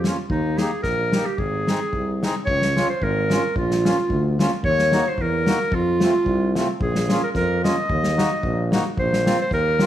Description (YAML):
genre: alpine folk, alpine dance band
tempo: 111 BPM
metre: 2/4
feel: swing 54% on 8ths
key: unclear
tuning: A4 = 441 Hz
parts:
  - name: clear clarinet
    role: melody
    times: 0.0-9.9 s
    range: Eb4 to Eb5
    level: -22 LUFS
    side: right 1 dB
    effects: none
  - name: warm tuba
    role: bass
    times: 0.0-9.9 s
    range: Ab1 to F2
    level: -24 LUFS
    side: equal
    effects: none
  - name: unplugged drum kit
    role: drums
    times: 0.0-9.9 s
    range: kick drum, snare drum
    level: -25 LUFS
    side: left 1 dB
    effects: none
  - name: accordion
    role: accompaniment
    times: 0.1-9.9 s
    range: Ab3 to Ab4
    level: -27 LUFS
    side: equal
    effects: none
room: light reverb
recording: small room ambience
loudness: -18 LUFS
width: side -11 dB against mid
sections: 0.0-2.5 A section; 2.5-9.9 B section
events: none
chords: 0.3 Eb; 1.4 Ab; 2.5 Db6; 3.6 Bbm; 4.6 Ebm; 5.7 F; 6.8 Bbm; 7.9 Ebm; 9.0 Bbsus2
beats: | 0.30 0.84 | 1.39 1.93 | 2.48 3.02 | 3.57 4.11 | 4.64 5.18 | 5.72 6.27 | 6.81 7.36 | 7.90 8.44 | 8.97 9.51